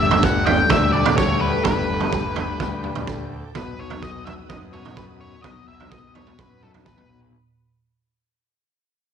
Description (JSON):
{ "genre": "psychedelic rock", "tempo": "127 BPM", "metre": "4/4", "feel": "straight", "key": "unclear", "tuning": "A4 = 440 Hz", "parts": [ { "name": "octave-fuzz lead guitar", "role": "melody", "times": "0.0-7.2 s", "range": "A4 to G5", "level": "-23 LUFS", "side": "left 2 dB", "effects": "distortion, slapback echo" }, { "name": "ensemble organ-string", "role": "sustained chords", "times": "0.0-7.3 s", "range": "A4 to D#6", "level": "-32 LUFS", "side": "right 6 dB", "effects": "ensemble chorus" }, { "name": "electric guitar through a small old amp", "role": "riff", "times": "0.0-7.3 s", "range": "B2 to G4", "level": "-28 LUFS", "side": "left 13 dB", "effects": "rotary speaker" }, { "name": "fuzz fingered electric bass", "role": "bass", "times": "0.0-7.3 s", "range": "G1 to F#2", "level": "-28 LUFS", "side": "equal", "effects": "overdrive" }, { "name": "raw garage drum kit", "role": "drums", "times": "0.1-7.1 s", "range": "kick drum, toms", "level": "-22 LUFS", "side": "right 5 dB", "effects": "none" } ], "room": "moderate echo chamber reverb, RT60 1.3 s, studio reverb", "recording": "1960s-style stereo with parts hard left and right", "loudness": "-17 LUFS", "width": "side -8 dB against mid", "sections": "0.0-7.3 A section", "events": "fade-out 0.0-7.3", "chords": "0.0 Gsus2; 3.6 B" }